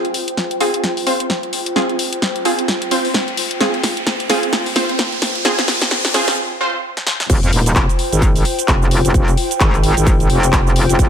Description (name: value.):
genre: bass house.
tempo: 130 BPM.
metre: 4/4.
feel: swing 59% on 16ths.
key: F minor.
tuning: A4 = 438 Hz.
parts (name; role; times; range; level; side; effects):
orchestra-hit-like synth stab; stabs; 0.0-6.8 s; C4 to C5; -20 LUFS; right 1 dB; built-in reverb, sidechain pumping, ping-pong delay.
house drum kit; drums; 0.0-11.1 s; crash cymbal, handclaps, hi-hat, shaker, snare drum; -19 LUFS; equal; none.
riser; sound effects; 1.7-6.4 s; none; -24 LUFS; equal; none.
airy breathy pad; texture; 0.0-11.1 s; F4 to G5; -23 LUFS; left 1 dB; chorus, sidechain pumping.
metallic wobble bass; bass; 7.3-11.1 s; Eb1 to F2; -15 LUFS; equal; chorus, tube saturation, sidechain pumping.
electronic kick drum; drums; 7.3-11.1 s; none; -15 LUFS; equal; none.
room: light reverb, digital ambience.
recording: high-pass filter.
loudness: -14 LUFS.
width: side -8 dB against mid.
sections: 0.0-7.3 A section; 7.3-11.1 B section.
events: build-up 0.0-7.3; drum fill 0.0-6.4, 7.0-7.3; filter sweep on synth stab 0.0-7.3; filter sweep 0.0-7.3; riser 1.7-6.4; break 6.4-7.3; drop 7.3-11.1.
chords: 0.0 Fm.